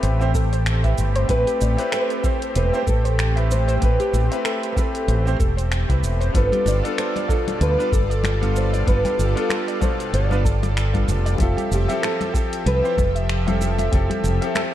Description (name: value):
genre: sunset chillout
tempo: 95 BPM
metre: 4/4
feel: swing 57% on 16ths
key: A minor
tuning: A4 = 444 Hz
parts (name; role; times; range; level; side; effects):
- nylon-string guitar; melody; 0.0-14.7 s; F4 to D5; -26 LUFS; equal; tape echo
- bright concert grand piano; accompaniment; 0.0-14.7 s; B2 to E5; -27 LUFS; equal; auto-pan, tape echo
- lush unison pad; sustained chords; 0.0-14.7 s; F3 to E5; -29 LUFS; equal; chorus
- soft round pluck; arpeggios; 0.0-14.7 s; G4 to F5; -31 LUFS; right 2 dB; analog chorus, tape echo
- mellow fretless electric bass; bass; 0.0-14.4 s; E1 to D2; -20 LUFS; equal; none
- smooth R&B drum kit; drums; 0.0-14.7 s; cabasa, finger snaps, hi-hat; -30 LUFS; equal; studio ambience
- electronic kick drum; drums; 0.3-14.1 s; none; -22 LUFS; equal; studio ambience
- congas; percussion; 6.3-14.7 s; none; -30 LUFS; left 5 dB; none
room: light reverb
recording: dark, warm production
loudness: -18 LUFS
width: side -12 dB against mid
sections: 0.0-14.7 A section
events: none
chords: 0.0 Am9; 6.3 G9; 11.4 Fmaj9